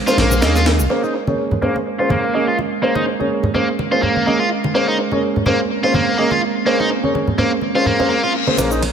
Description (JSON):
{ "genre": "breakbeat, breaks", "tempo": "125 BPM", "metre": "4/4", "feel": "swing 55% on 16ths", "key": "Bb minor", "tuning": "A4 = 442 Hz", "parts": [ { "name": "warbly tape-like pad", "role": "sustained chords", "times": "0.0-8.9 s", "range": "Ab3 to Db4", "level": "-24 LUFS", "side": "right 5 dB", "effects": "chorus, built-in reverb, sidechain pumping" }, { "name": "distorted electric guitar", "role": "riff", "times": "0.1-8.8 s", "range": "Bb3 to F4", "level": "-20 LUFS", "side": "equal", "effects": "overdrive, low-pass filter, tape echo" }, { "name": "dark baby grand piano", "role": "stabs", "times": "0.1-8.8 s", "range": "Bb3 to Eb5", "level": "-19 LUFS", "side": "right 1 dB", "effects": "vintage 12-bit sampler grit, low-pass filter, tape echo" }, { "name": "breakbeat sampler-style drum kit", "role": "drums", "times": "0.1-0.8, 8.6-8.9 s", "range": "kick drum, ride cymbal, snare drum", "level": "-22 LUFS", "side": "equal", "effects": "high-pass filter on cymbals, high-pass filter on kick, high-pass filter on snare, high-pass filter on hats, tape echo" }, { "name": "shaker", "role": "drums", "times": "0.1-0.9, 8.6-8.8 s", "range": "none", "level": "-30 LUFS", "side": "left 2 dB", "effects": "tape echo" }, { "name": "fat analog bass", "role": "bass", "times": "0.2-0.9, 8.6-8.9 s", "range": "Bb1 to Eb2", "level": "-18 LUFS", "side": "left 1 dB", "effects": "none" }, { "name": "congas", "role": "percussion", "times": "0.2-8.7 s", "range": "none", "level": "-23 LUFS", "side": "equal", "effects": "none" }, { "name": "reverse cymbal and riser", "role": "sound effects", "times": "8.3-8.9 s", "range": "none", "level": "-26 LUFS", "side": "left 7 dB", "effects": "none" } ], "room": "moderate echo chamber reverb, RT60 1.5 s, digital ambience", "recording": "echo-heavy mix", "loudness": "-15 LUFS", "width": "side -7 dB against mid", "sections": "0.9-8.6 A section", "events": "break 0.0-0.9; filter sweep on grand piano 0.9-8.6; reverse cymbal 8.3-8.6; riser 8.6-8.9", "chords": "0.0 Bbm9" }